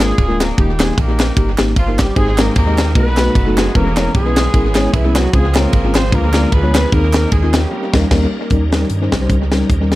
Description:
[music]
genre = uptempo gospel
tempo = 151 BPM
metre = 4/4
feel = swing 55% on 8ths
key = unclear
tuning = A4 = 438 Hz
[part]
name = mellow horn section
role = melody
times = 0.0-8.3 s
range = E3 to C5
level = -21 LUFS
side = equal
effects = analog delay
[part]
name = mellow tine electric piano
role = accompaniment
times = 0.0-10.0 s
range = Ab2 to Eb5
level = -19 LUFS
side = left 1 dB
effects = analog delay
[part]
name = sub bass with octave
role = bass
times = 0.0-10.0 s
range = D1 to G2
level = -17 LUFS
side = equal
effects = none
[part]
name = tight funk drum kit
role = drums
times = 0.0-10.0 s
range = crash cymbal, hi-hat, kick drum, ride cymbal, snare drum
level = -16 LUFS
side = equal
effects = analog delay
[part]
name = group handclap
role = percussion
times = 0.0-7.6 s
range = none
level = -30 LUFS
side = right 4 dB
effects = none
[part]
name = bright tonewheel organ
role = sustained chords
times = 2.1-10.0 s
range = Db3 to C5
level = -25 LUFS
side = right 2 dB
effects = slow rotary speaker, chorus vibrato
[sound]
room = light reverb, small room ambience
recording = echo-heavy mix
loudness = -12 LUFS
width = side -17 dB against mid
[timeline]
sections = 0.0-8.5 A section; 8.5-10.0 B section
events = band accent 7.7-8.5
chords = 0.0 Bb7; 0.6 Eb; 2.2 Abmaj7; 3.0 B7; 3.7 E6; 5.3 Dbmaj7; 6.1 Ddim7; 6.9 Ab/Eb; 7.7 Eb7

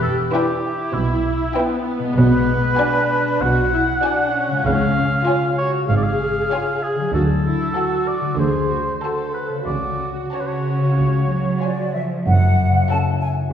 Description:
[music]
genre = cinematic, playful, whimsical film cue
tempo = 96 BPM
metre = 4/4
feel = straight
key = F# minor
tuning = A4 = 440 Hz
[part]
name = warm oboe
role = second line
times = 0.0-11.9 s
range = E4 to F#5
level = -23 LUFS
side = right 1 dB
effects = none
[part]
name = rich studio viola section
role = accompaniment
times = 0.0-13.4 s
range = B3 to A4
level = -24 LUFS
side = right 1 dB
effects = none
[part]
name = concert harp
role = arpeggios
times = 0.0-13.5 s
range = F#2 to D5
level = -26 LUFS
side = left 4 dB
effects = none
[part]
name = rich studio cello section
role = bass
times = 0.0-12.8 s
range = E2 to F#3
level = -22 LUFS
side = right 1 dB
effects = none
[part]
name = rich studio double bass section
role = bass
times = 0.0-12.8 s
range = E1 to D2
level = -23 LUFS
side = right 1 dB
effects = none
[part]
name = rich studio violin section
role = melody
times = 0.3-13.4 s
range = F#5 to A5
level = -31 LUFS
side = left 4 dB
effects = none
[part]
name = rich studio violin section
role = second line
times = 0.3-13.4 s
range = E4 to D5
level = -26 LUFS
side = left 1 dB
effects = none
[part]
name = flute section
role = second line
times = 11.6-13.3 s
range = D5 to A5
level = -23 LUFS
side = left 1 dB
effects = none
[sound]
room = wet scoring stage reverb, RT60 1.5 s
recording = heard from further back in the room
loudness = -17 LUFS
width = side -8 dB against mid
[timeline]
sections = 0.0-12.3 A section; 12.3-13.5 B section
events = none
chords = 0.0 Em; 2.2 G#m7b5/B; 4.7 C#; 7.1 D; 9.7 F#m/C#; 11.0 C#; 12.3 F#m

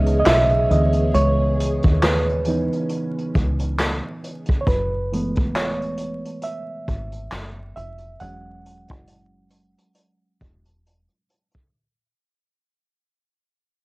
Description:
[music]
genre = lo-fi hip hop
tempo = 68 BPM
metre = 4/4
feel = swing 57% on 16ths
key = unclear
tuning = A4 = 440 Hz
[part]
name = bright reed electric piano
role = accompaniment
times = 0.0-11.8 s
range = E3 to F#5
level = -23 LUFS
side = right 2 dB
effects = overdrive, cassette tape, plate reverb
[part]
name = phased string machine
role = sustained chords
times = 0.0-4.6 s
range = C#3 to G#4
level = -29 LUFS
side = equal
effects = ensemble chorus, phaser, plate reverb
[part]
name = deep dub fingered electric bass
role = bass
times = 0.0-11.1 s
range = E1 to D#2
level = -22 LUFS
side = equal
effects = none
[part]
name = vintage brush drum kit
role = drums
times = 0.1-11.7 s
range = handclaps, hi-hat, kick drum, snare drum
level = -22 LUFS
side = equal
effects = cassette tape
[sound]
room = moderate booth ambience, RT60 0.2 s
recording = home recording on cassette, vinyl crackle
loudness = -18 LUFS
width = side -23 dB against mid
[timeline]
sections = 0.0-11.7 A section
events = fade-out 0.0-11.7; reed electric piano solo 0.0-11.7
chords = 0.0 C#m9; 4.7 F#m11; 8.2 E69

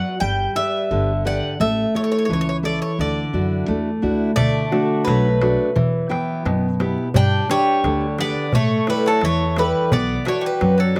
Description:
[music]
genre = greek folk, Greek bouzouki band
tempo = 87 BPM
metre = 2/4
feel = straight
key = D major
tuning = A4 = 440 Hz
[part]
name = Greek bouzouki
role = melody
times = 0.0-11.0 s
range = A4 to G5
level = -26 LUFS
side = equal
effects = none
[part]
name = picked steel-string acoustic guitar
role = accompaniment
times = 0.0-11.0 s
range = B2 to G5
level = -24 LUFS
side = equal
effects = none
[part]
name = upright bass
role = bass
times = 0.2-11.0 s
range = G1 to A2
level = -25 LUFS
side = equal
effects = none
[part]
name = Greek bouzouki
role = second line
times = 4.4-11.0 s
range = F#3 to D4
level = -28 LUFS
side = equal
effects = none
[part]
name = darbuka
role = percussion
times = 4.4-11.0 s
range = none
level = -25 LUFS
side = equal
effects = none
[sound]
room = little or no reverb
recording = recorded outdoors, with no room sound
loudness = -20 LUFS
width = mono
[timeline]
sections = 0.0-4.4 A section; 4.4-11.0 A section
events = none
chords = 0.2 G; 1.6 A; 3.0 Dadd9; 4.4 D; 5.8 Em; 7.1 G; 8.5 A; 9.9 Bm

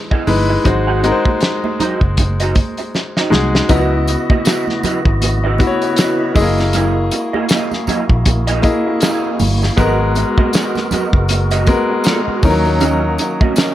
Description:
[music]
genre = lush 1970s-style soul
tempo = 79 BPM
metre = 4/4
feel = swing 58% on 16ths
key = C# dorian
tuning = A4 = 440 Hz
[part]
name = clear grand piano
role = accompaniment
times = 0.0-13.7 s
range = E3 to D#5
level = -18 LUFS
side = left 2 dB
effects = none
[part]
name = electric guitar through a small old amp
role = riff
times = 0.1-13.7 s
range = A#3 to F#5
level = -22 LUFS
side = right 4 dB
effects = ensemble chorus
[part]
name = warm soul drum kit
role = drums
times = 0.1-13.7 s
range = hi-hat, kick drum, snare drum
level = -16 LUFS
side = equal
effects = none
[part]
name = vintage muted fingered electric bass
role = bass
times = 0.3-13.2 s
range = F#1 to D#2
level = -17 LUFS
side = equal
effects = none
[part]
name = congas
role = percussion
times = 0.3-13.7 s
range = none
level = -25 LUFS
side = right 5 dB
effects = none
[part]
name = percussive tonewheel organ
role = sustained chords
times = 3.7-13.7 s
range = C#3 to D#5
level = -24 LUFS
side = equal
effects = slow rotary speaker, overdrive
[part]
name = tambourine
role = percussion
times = 3.7-13.7 s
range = none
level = -34 LUFS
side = right 4 dB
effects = none
[sound]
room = small room ambience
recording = none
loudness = -13 LUFS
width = side -13 dB against mid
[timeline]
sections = 0.0-3.7 A section; 3.7-13.7 B section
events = drum fill 2.9-3.7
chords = 0.0 Emaj7; 0.7 G#7; 3.7 C#m11; 6.4 F#13; 9.8 G#m9; 12.4 D#m7

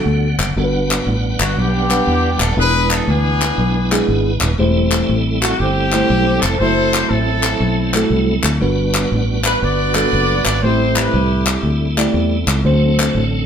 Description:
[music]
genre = uptempo gospel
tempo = 119 BPM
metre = 4/4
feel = swing 65% on 8ths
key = G major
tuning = A4 = 439 Hz
[part]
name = clear horn section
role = melody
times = 0.0-11.9 s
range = B3 to D5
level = -19 LUFS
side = equal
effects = none
[part]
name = mellow tine electric piano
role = accompaniment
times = 0.0-13.4 s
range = G2 to F#5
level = -19 LUFS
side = equal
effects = none
[part]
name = tonewheel organ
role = sustained chords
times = 0.0-13.5 s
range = D3 to F#5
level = -22 LUFS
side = right 2 dB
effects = fast rotary speaker, overdrive, chorus vibrato
[part]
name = fingered electric bass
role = bass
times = 0.1-13.5 s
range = Eb1 to E2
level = -18 LUFS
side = equal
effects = none
[part]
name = group handclap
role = percussion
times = 0.4-13.1 s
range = none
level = -21 LUFS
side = left 4 dB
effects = none
[sound]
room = moderate studio reverb, RT60 0.7 s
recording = band playing live in one room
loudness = -13 LUFS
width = side -8 dB against mid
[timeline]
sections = 0.6-13.5 A section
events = none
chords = 0.0 Gmaj7; 2.6 E7; 4.6 Am7/E; 6.6 F#m7b5; 8.6 Gmaj7; 10.6 Am7; 12.6 D7

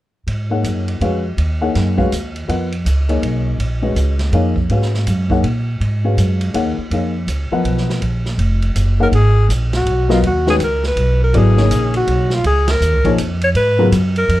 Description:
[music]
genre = modal jazz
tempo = 163 BPM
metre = 3/4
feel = swing 63% on 8ths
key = G# dorian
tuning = A4 = 440 Hz
[part]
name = upright bass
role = bass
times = 0.3-14.4 s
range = E#1 to A#2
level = -16 LUFS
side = right 1 dB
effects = none
[part]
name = vintage drum kit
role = drums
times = 0.3-14.4 s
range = hi-hat, kick drum, ride cymbal, snare drum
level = -27 LUFS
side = right 2 dB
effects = none
[part]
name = dark baby grand piano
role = accompaniment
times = 0.5-13.9 s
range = C#3 to F#5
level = -19 LUFS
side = left 3 dB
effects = none
[part]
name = breathy alto saxophone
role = melody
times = 9.0-14.4 s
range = E#4 to C#5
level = -17 LUFS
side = equal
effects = none
[sound]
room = little or no reverb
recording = dark, warm production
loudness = -14 LUFS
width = side -15 dB against mid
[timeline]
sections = 0.3-9.1 A section; 9.1-14.4 B section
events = band accent 12.6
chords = 0.3 G#m9; 2.5 A#m; 4.7 G#m9; 6.9 A#m; 9.1 G#m9; 11.3 A#m/G#; 13.6 G#m9

